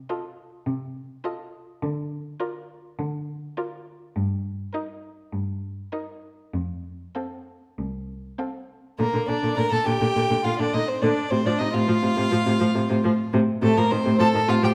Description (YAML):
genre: quick classical-period movement for string quartet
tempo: 103 BPM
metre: 4/4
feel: rubato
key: Bb major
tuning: A4 = 440 Hz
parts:
  - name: warm violin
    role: melody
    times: 0.1-14.7 s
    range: A4 to Bb5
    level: -30 LUFS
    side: equal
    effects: none
  - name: warm violin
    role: second line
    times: 0.1-14.7 s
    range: A3 to Bb4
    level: -30 LUFS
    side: equal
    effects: none
  - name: warm viola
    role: accompaniment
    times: 0.1-14.7 s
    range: C3 to F4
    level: -30 LUFS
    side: equal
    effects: none
  - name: rich cello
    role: bass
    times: 0.7-14.7 s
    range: C2 to D3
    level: -27 LUFS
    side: equal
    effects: none
room: wet recital hall reverb, RT60 1.4 s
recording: none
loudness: -25 LUFS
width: mono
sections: 0.0-9.0 A section; 9.0-14.7 B section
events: none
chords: 0.0 F7; 1.8 Bb/D; 4.2 Eb/G; 6.5 F; 9.0 Bb; 11.3 F/A